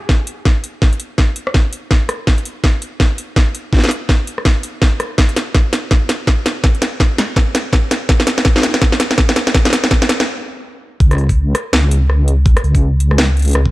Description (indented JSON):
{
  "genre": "half-time drum and bass",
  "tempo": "165 BPM",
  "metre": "4/4",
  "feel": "swing 60% on 16ths, half-time",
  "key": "unclear",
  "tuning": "A4 = 440 Hz",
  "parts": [
    { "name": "drum and bass drum kit", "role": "drums", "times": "0.1-13.6 s", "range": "hi-hat, rim click, snare drum", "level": "-16 LUFS", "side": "equal", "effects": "none" },
    { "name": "electronic kick drum", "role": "drums", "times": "0.1-13.7 s", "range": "none", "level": "-13 LUFS", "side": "equal", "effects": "none" },
    { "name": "deep soft wobble bass", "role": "bass", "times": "11.0-13.7 s", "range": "C#2", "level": "-12 LUFS", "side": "equal", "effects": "chorus" }
  ],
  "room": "light reverb",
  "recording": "dry, gritty hardware recording",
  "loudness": "-12 LUFS",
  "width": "side -18 dB against mid",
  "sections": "0.0-11.0 A section; 11.0-13.7 B section",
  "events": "build-up 0.0-11.0; drum fill 0.0-10.3; stop 10.3-11.0; drop 11.0-13.7",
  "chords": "none"
}